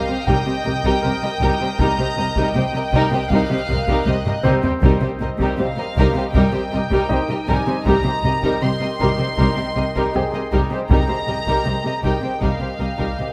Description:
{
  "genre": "cinematic, suspense film score",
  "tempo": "79 BPM",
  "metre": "4/4",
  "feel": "straight",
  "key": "C minor",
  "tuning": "A4 = 439 Hz",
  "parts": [
    { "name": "warm studio violin section", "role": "melody", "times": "0.0-13.3 s", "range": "Eb5 to C6", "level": "-29 LUFS", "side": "equal", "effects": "none" },
    { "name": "warm studio violin section", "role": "second line", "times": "0.0-13.3 s", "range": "Eb4 to Eb5", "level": "-28 LUFS", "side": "equal", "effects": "none" },
    { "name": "dark studio viola section", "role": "accompaniment", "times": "0.0-13.3 s", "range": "G3 to G4", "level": "-27 LUFS", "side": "equal", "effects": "none" },
    { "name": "glassy FM pad", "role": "sustained chords", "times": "0.0-13.3 s", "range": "Bb4 to Bb5", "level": "-32 LUFS", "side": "equal", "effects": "ensemble chorus, built-in reverb, phaser" },
    { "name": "bright grand piano", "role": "texture", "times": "0.0-13.3 s", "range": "C4 to G5", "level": "-33 LUFS", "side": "equal", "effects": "none" },
    { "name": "dark studio violin section", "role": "texture", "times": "0.0-4.4 s", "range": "Eb6 to Bb6", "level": "-35 LUFS", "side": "equal", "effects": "none" },
    { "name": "warm studio cello section", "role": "bass", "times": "0.1-13.3 s", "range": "C3", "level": "-27 LUFS", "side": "equal", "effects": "none" },
    { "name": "dark studio double bass section", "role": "bass", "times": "0.3-13.3 s", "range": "C2", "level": "-26 LUFS", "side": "equal", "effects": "none" },
    { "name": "taiko ensemble", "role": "drums", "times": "0.3-13.3 s", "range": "none", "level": "-26 LUFS", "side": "equal", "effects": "none" }
  ],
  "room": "light reverb",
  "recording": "close, detailed microphones",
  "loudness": "-19 LUFS",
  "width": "mono",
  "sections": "0.0-13.3 A section",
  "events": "drum fill 4.1-4.8",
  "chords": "0.0 Cm7"
}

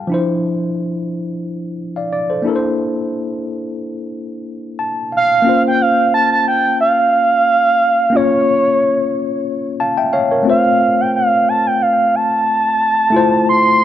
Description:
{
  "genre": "soul",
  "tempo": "90 BPM",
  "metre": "4/4",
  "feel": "swing 54% on 16ths",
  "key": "unclear",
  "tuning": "A4 = 438 Hz",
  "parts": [
    { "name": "mellow tine electric piano", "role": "accompaniment", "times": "0.0-13.8 s", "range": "F3 to A5", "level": "-18 LUFS", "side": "left 2 dB", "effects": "medium stereo tremolo" },
    { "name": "expressive synth lead", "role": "melody", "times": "5.2-13.8 s", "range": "Db5 to C6", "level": "-13 LUFS", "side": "right 2 dB", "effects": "chorus, analog delay" }
  ],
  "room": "light reverb, digital ambience",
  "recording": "none",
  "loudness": "-13 LUFS",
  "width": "side -11 dB against mid",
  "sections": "0.0-5.5 A section; 5.5-13.8 B section",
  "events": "tine electric piano fill 4.5-5.5",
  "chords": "0.1 Dm9; 2.4 C13; 5.5 Bbmadd9; 10.5 Fmaj7"
}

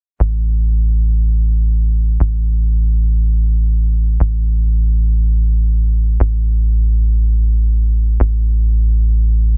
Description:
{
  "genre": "techno",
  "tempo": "free time",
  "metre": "none",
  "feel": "none",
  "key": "unclear",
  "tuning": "A4 = 440 Hz",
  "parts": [
    { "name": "tight sequencer bass", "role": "bass", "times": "0.2-9.6 s", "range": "A1", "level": "-15 LUFS", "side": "equal", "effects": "none" }
  ],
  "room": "little or no reverb",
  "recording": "dense, heavily limited modern master",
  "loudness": "-15 LUFS",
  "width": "mono",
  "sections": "0.2-9.6 A section",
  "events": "none",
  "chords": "none"
}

